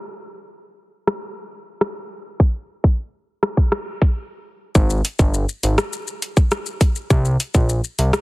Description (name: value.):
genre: dancehall.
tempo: 102 BPM.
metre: 4/4.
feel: straight.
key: unclear.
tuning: A4 = 440 Hz.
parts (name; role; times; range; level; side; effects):
island pop drum kit; drums; 1.1-8.2 s; hi-hat, kick drum, rim click, shaker; -18 LUFS; equal; overdrive.
fat analog bass; bass; 4.8-8.1 s; G1 to C2; -18 LUFS; equal; none.
room: little or no reverb.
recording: heavily compressed radio sound, multiband compression, low-pass filter.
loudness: -18 LUFS.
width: side -22 dB against mid.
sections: 0.0-4.8 A section; 4.8-8.2 B section.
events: filter sweep 0.0-4.8; break 4.2-4.8.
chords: none.